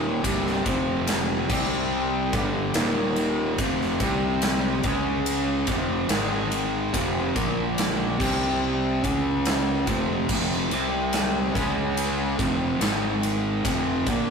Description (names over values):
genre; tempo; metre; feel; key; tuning
stoner and doom metal; 72 BPM; 4/4; straight; C minor; A4 = 440 Hz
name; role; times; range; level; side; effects
fuzz guitar; riff; 0.0-14.3 s; C2 to Db4; -24 LUFS; equal; distortion
fuzz fingered electric bass; bass; 0.0-14.3 s; C1 to Db2; -32 LUFS; equal; overdrive, tube saturation
big rock drum kit; drums; 0.2-14.3 s; crash cymbal, kick drum, ride cymbal, snare drum; -27 LUFS; equal; none
room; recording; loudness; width
light reverb; rough rehearsal-room recording, warm saturation; -22 LUFS; side -5 dB against mid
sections
0.0-14.3 A section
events
none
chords
0.2 C5; 0.7 F5; 1.5 C5; 2.8 Eb5; 3.6 F5; 4.0 C5; 4.8 Db5; 5.7 F5; 6.1 Ab5; 6.9 F5; 7.4 Bb5; 8.2 C5; 9.0 Db5; 9.9 F5; 10.7 C5; 11.5 Db5; 12.4 F5; 12.8 Ab5; 13.6 F5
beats
| 0.24 1.08 1.92 2.75 | 3.59 4.42 5.26 6.10 | 6.94 7.78 8.61 9.45 | 10.29 11.13 11.96 12.80 | 13.64